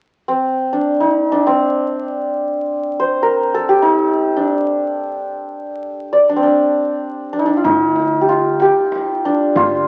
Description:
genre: Persian modal ensemble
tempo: free time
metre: none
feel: none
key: D dastgah shur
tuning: A4 = 440 Hz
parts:
  - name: santur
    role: melody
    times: 0.3-9.9 s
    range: C4 to D5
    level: -17 LUFS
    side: equal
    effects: none
  - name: upright bass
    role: bass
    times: 7.6-9.9 s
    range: D2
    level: -31 LUFS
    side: equal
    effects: none
  - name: tombak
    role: percussion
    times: 7.6-9.8 s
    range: none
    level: -30 LUFS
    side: equal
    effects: none
room: moderate large studio reverb, RT60 1.2 s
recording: very old 78 rpm record, vinyl crackle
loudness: -16 LUFS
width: mono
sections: 0.0-7.6 A section; 7.6-9.9 B section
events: none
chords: none

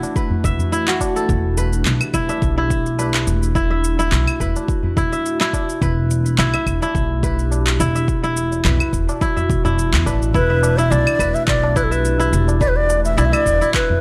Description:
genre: organic downtempo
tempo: 106 BPM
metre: 4/4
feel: swing 54% on 16ths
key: E minor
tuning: A4 = 440 Hz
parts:
  - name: warbly tape-like pad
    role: sustained chords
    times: 0.0-14.0 s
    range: B2 to G4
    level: -31 LUFS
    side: equal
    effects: chorus, built-in reverb, phaser, sidechain pumping
  - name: kora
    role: arpeggios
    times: 0.0-14.0 s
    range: E4 to E5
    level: -24 LUFS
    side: equal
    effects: tape echo
  - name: electronic shaker, handclaps and claves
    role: drums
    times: 0.0-13.9 s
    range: none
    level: -26 LUFS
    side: equal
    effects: overdrive
  - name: tabla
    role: percussion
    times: 0.0-14.0 s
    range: none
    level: -29 LUFS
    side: equal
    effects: none
  - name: electronic kick drum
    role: drums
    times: 0.2-13.9 s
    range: none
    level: -25 LUFS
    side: equal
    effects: overdrive
  - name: upright bass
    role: bass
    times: 0.4-13.6 s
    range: E1 to E2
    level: -21 LUFS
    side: equal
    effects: tube saturation, sidechain pumping
  - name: breathy bright low ney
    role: melody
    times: 10.3-14.0 s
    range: A4 to E5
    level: -21 LUFS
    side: equal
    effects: analog delay
room: studio reverb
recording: dry, gritty hardware recording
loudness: -18 LUFS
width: mono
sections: 0.0-10.3 A section; 10.3-14.0 B section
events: none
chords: 0.0 Bm; 1.3 Em7; 3.6 D6/E; 5.8 G69/E; 8.1 Bm/E; 10.3 Em7; 12.6 D6/E

